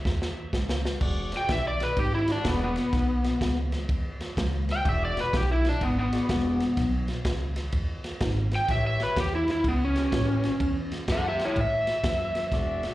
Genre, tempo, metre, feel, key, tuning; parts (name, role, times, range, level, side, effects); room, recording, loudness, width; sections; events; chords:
electric blues shuffle; 125 BPM; 4/4; swing 65% on 8ths; E mixolydian; A4 = 439 Hz
overdriven slide guitar; melody; 0.0-12.9 s; B3 to G5; -26 LUFS; equal; slapback echo
upright bass; bass; 0.1-12.8 s; E1 to A2; -29 LUFS; equal
crunchy breakbeat drum kit; drums; 0.1-12.9 s; crash cymbal, kick drum, ride cymbal, snare drum; -30 LUFS; equal
warm horn section; stabs; 1.0-12.9 s; F#4 to D5; -40 LUFS; left 1 dB; slapback echo, tape echo
little or no reverb; live gig heard through the venue's PA, club reverb; -24 LUFS; side -16 dB against mid
0.0-1.0 A section; 1.0-12.9 B section
drum fill 0.1-1.0; electric slide guitar solo 1.0-12.9
0.0 N.C.; 1.0 E9; 8.7 A9